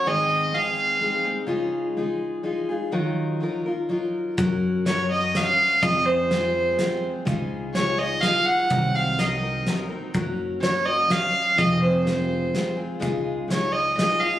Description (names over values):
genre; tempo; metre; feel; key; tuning
folk; 125 BPM; 3/4; straight; Db major; A4 = 436 Hz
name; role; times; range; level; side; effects
warm fiddle; melody; 0.0-1.3, 4.9-14.4 s; C5 to Gb5; -21 LUFS; right 1 dB; none
picked steel-string acoustic guitar; accompaniment; 0.0-14.4 s; Ab2 to Bb4; -27 LUFS; left 1 dB; none
upright bass; bass; 4.4-13.9 s; F1 to Gb2; -27 LUFS; equal; none
loose indie drum kit; drums; 4.4-14.1 s; hi-hat, kick drum, snare drum; -30 LUFS; equal; none
room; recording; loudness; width
moderate concert hall reverb, RT60 2.3 s; recorded on a phone in the room, club reverb; -21 LUFS; side -12 dB against mid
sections
0.0-4.4 A section; 4.4-14.4 B section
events
none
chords
0.1 Ab; 1.5 Dbadd9; 2.9 Ebmadd9; 4.4 Gb; 5.8 Fm; 7.3 Dbadd9; 8.7 Cm7b5; 10.1 Gb; 11.6 Fm; 13.0 Dbadd9